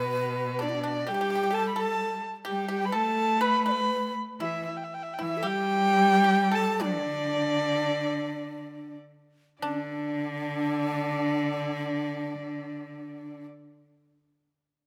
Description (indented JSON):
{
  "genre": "chinese traditional, Chinese chamber ensemble",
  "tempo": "44-66 BPM",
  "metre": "4/4",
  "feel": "rubato",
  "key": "D zhi mode",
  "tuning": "A4 = 441 Hz",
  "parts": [
    { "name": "dark erhu", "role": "melody", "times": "0.0-13.5 s", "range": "B4 to B5", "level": "-31 LUFS", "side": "equal", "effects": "none" },
    { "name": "breathy low xiao", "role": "second line", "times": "0.0-13.5 s", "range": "D4 to D5", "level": "-35 LUFS", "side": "equal", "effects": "none" },
    { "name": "clear cello", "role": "second line", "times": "0.0-13.4 s", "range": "B2 to A3", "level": "-34 LUFS", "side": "equal", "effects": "none" },
    { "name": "pipa", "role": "second line", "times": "0.0-13.4 s", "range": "D4 to B4", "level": "-37 LUFS", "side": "equal", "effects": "none" }
  ],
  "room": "moderate scoring stage reverb, RT60 1.9 s",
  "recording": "close, detailed microphones",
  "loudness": "-28 LUFS",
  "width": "mono",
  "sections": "0.0-9.6 A section; 9.6-14.9 B section",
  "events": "slowing down 1.1-9.6",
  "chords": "none"
}